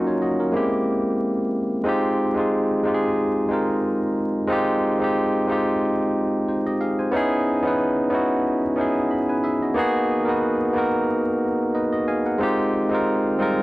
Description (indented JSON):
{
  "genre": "R&B",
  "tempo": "91 BPM",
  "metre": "4/4",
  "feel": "swing 55% on 16ths",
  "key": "unclear",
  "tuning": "A4 = 440 Hz",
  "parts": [
    { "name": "barky tine electric piano", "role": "solo", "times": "0.0-13.6 s", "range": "Gb3 to Cb6", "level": "-19 LUFS", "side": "equal", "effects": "none" }
  ],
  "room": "little or no reverb",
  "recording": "dry, close 1970s-style studio recording, vinyl crackle",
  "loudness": "-19 LUFS",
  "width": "side -18 dB against mid",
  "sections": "0.0-1.8 A section; 1.8-13.6 B section",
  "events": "tine electric piano fill 11.4-12.4",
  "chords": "0.0 Ebm9; 0.5 C7b13; 1.8 Fm9; 7.1 Dbm9; 9.8 Abm9; 12.4 Fm9",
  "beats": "0.53 1.19 | 1.85 2.50 3.16 3.82 | 4.48 5.14 5.80 6.46 | 7.12 7.78 8.44 9.10 | 9.76 10.42 11.08 11.74 | 12.39 13.05"
}